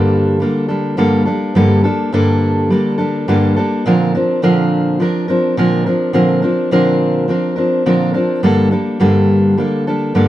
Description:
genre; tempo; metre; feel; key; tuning
pop; 105 BPM; 4/4; swing 60% on 16ths; G minor; A4 = 441 Hz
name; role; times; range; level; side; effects
fingerpicked steel-string acoustic guitar; solo; 0.0-10.3 s; G2 to Bb4; -12 LUFS; equal; none
room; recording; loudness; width
moderate studio reverb, RT60 0.8 s; dark, warm production; -12 LUFS; side -14 dB against mid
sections
0.0-10.3 A section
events
none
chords
0.0 Gmadd9; 3.9 Bbadd9; 8.4 Gmadd9

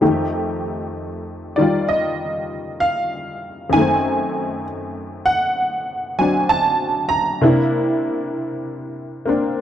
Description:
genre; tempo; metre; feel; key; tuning
solo jazz; 65 BPM; 4/4; swing 66% on 8ths, rubato; unclear; A4 = 439 Hz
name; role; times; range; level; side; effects
honky-tonk upright piano; solo; 0.0-9.6 s; F2 to Bb5; -18 LUFS; equal; none
room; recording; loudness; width
moderate booth ambience, RT60 0.2 s; dry, close 1970s-style studio recording; -18 LUFS; side -10 dB against mid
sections
0.0-9.6 A section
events
none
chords
0.0 F9; 3.7 F#dim7; 7.4 C9

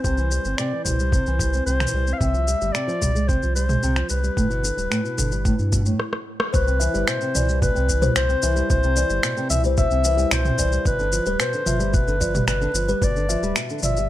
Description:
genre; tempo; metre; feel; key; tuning
folktronica; 111 BPM; 4/4; straight; C major; A4 = 440 Hz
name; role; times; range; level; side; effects
mellow clarinet; melody; 0.0-14.1 s; B4 to F5; -25 LUFS; left 1 dB; vintage 12-bit sampler grit, digital delay
nylon-string guitar; arpeggios; 0.0-14.1 s; A2 to C4; -27 LUFS; right 1 dB; digital delay
warm sub bass; bass; 0.0-14.1 s; D1 to G2; -23 LUFS; equal; tube saturation
electronic kick drum; drums; 0.0-13.1 s; none; -23 LUFS; equal; none
organic electronic drum kit; drums; 0.0-14.1 s; finger snaps, rim click, shaker, toms; -26 LUFS; equal; none
kalimba; second line; 6.5-14.0 s; B4 to E5; -28 LUFS; left 5 dB; ping-pong delay
room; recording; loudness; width
small room reverb; none; -19 LUFS; side -14 dB against mid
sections
0.0-6.5 A section; 6.5-14.1 B section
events
drum fill 6.0-6.5; stop 6.0-6.5; band accent 6.4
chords
0.0 C; 2.2 Fsus2; 4.4 Gadd9; 6.5 Cmaj7; 10.9 G7

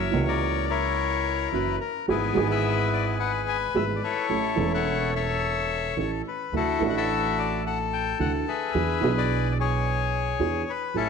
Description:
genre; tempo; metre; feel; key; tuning
tango; 108 BPM; 4/4; rubato; unclear; A4 = 440 Hz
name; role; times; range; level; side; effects
bandoneon; melody; 0.0-11.1 s; B3 to G#5; -26 LUFS; left 8 dB; none
dark upright piano; accompaniment; 0.0-11.1 s; E1 to A4; -28 LUFS; right 4 dB; none
upright bass; bass; 0.0-11.1 s; E1 to E2; -31 LUFS; right 3 dB; none
room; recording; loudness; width
moderate echo chamber reverb, RT60 1.7 s, small room reverb; none; -23 LUFS; side -6 dB against mid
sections
0.0-11.1 A section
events
none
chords
0.0 F#7; 2.1 E/G#; 4.3 A; 6.5 Dadd9; 8.7 E7

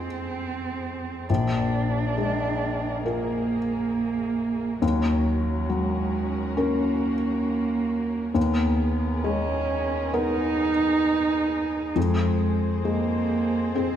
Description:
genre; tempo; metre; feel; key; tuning
neoclassical piano and strings; 68 BPM; 4/4; rubato; Eb minor; A4 = 441 Hz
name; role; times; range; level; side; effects
muted cello; second line; 0.0-14.0 s; Gb3 to Eb4; -26 LUFS; right 4 dB; none
felt-muted upright piano; accompaniment; 0.0-14.0 s; Bb1 to Bb4; -25 LUFS; left 2 dB; none
muted chamber string section; sustained chords; 0.0-14.0 s; Ab3 to C5; -36 LUFS; left 1 dB; none
room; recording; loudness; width
wet recital hall reverb, RT60 1.8 s; recorded in a church or concert hall; -22 LUFS; side -10 dB against mid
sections
0.0-14.0 A section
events
none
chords
0.0 Fm; 1.3 Bb7; 4.8 Ebm7; 8.4 Abmadd9/Eb; 12.0 Fm

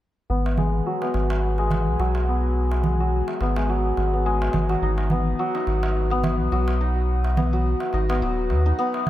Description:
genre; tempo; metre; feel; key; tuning
organic downtempo; 106 BPM; 4/4; swing 55% on 16ths; G# minor; A4 = 440 Hz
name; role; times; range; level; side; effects
santur; arpeggios; 0.3-9.1 s; F#3 to D#4; -24 LUFS; left 1 dB; low-pass filter, tape echo, shimmer reverb
round analog bass; bass; 0.3-8.7 s; D#1 to D#2; -22 LUFS; equal; none
darbuka; percussion; 0.5-9.1 s; none; -29 LUFS; right 1 dB; none
room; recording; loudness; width
light reverb, small room ambience; none; -20 LUFS; side -13 dB against mid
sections
0.3-9.1 A section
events
filter sweep on analog synth bass 0.3-9.1; filter sweep on santur 0.3-9.1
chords
0.3 G#m7; 4.8 B/G#

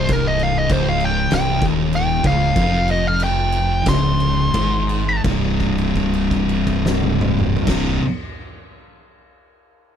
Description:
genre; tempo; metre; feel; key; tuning
stoner and doom metal; 84-99 BPM; 4/4; straight; C phrygian; A4 = 442 Hz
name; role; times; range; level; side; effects
fuzz lead guitar; melody; 0.0-5.2 s; Bb4 to C6; -20 LUFS; equal; distortion, slapback echo
thick fuzz guitar; riff; 0.0-8.0 s; C2 to C3; -22 LUFS; left 10 dB; distortion
thick fuzz guitar; riff; 0.0-8.0 s; C2 to C3; -23 LUFS; right 10 dB; distortion
growling fingered electric bass; bass; 0.0-8.0 s; C1 to Ab1; -23 LUFS; equal; overdrive
oversized low-tuned drum kit; drums; 0.1-7.8 s; crash cymbal, kick drum, snare drum, toms; -24 LUFS; equal; none
room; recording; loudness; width
little or no reverb; none; -16 LUFS; side -8 dB against mid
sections
0.0-5.3 A section; 5.3-8.1 B section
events
lead electric guitar solo 0.0-5.3; slowing down 0.1-5.3; held note 5.3-7.7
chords
0.0 Cm; 5.3 C5

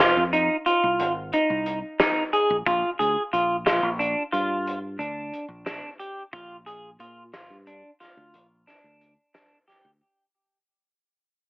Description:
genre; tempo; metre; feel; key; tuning
progressive instrumental, band music in an uneven meter; 180 BPM (eighths); 11/8; straight; unclear; A4 = 440 Hz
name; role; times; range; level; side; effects
clean electric guitar; arpeggios; 0.0-9.9 s; D4 to Ab4; -23 LUFS; equal; lush chorus, tape echo
fingered electric bass; bass; 0.0-10.0 s; F1 to Bb2; -33 LUFS; equal; none
loose indie drum kit; drums; 0.3-9.8 s; hi-hat, kick drum, snare drum; -25 LUFS; equal; none
room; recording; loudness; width
moderate studio reverb, RT60 0.6 s; telephone sound; -22 LUFS; side -23 dB against mid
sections
0.0-10.0 A section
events
fade-out 0.0-10.0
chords
0.0 Ab5; 2.7 Bb

